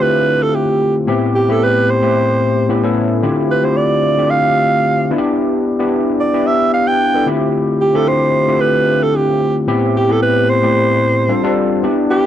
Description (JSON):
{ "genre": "pop", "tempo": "112 BPM", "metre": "4/4", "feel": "swing 54% on 16ths", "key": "D dorian", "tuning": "A4 = 443 Hz", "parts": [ { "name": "breathy alto saxophone", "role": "melody", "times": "0.0-12.3 s", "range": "G4 to G5", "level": "-15 LUFS", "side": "right 3 dB", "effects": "none" }, { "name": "overdriven tine electric piano", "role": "accompaniment", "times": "0.0-12.3 s", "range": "A2 to A4", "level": "-14 LUFS", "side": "left 2 dB", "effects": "analog chorus" } ], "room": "moderate booth ambience, RT60 0.2 s", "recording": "dry, close 1970s-style studio recording", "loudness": "-12 LUFS", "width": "side -10 dB against mid", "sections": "0.0-11.8 A section", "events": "none", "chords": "0.0 Dm11; 1.1 Am9; 2.7 A7; 3.2 Dm11; 5.1 Em7; 7.3 Dm11; 9.7 Am9; 11.3 G9sus4" }